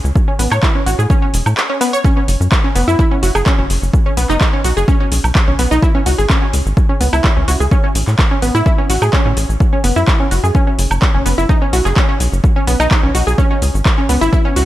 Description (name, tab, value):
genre	progressive house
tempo	127 BPM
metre	4/4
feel	straight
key	unclear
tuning	A4 = 440 Hz
part	tight sequencer bass	bass	0.0-14.7 s	E1 to A2	-16 LUFS	equal	sidechain pumping
part	deep house drum kit	drums	0.1-14.7 s	cabasa, handclaps, hi-hat, woodblock	-20 LUFS	equal	overdrive, studio reverb
part	electronic kick drum	drums	0.2-14.4 s	none	-14 LUFS	equal	overdrive, studio reverb
part	wide unison pluck	arpeggios	0.3-14.6 s	B3 to C#6	-18 LUFS	equal	sidechain pumping, tape echo
room	little or no reverb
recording	none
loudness	-11 LUFS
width	side -14 dB against mid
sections	0.0-14.7 A section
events	none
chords	0.2 A; 2.0 F#5; 3.9 N.C.; 5.8 C#5; 7.7 A; 9.6 F#5; 11.5 B5; 13.4 C#5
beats	| 0.16 0.63 1.10 1.57 | 2.05 2.52 2.99 3.46 | 3.94 4.41 4.88 5.35 | 5.83 6.30 6.77 7.24 | 7.71 8.19 8.66 9.13 | 9.61 10.08 10.55 11.02 | 11.49 11.97 12.44 12.91 | 13.38 13.86 14.33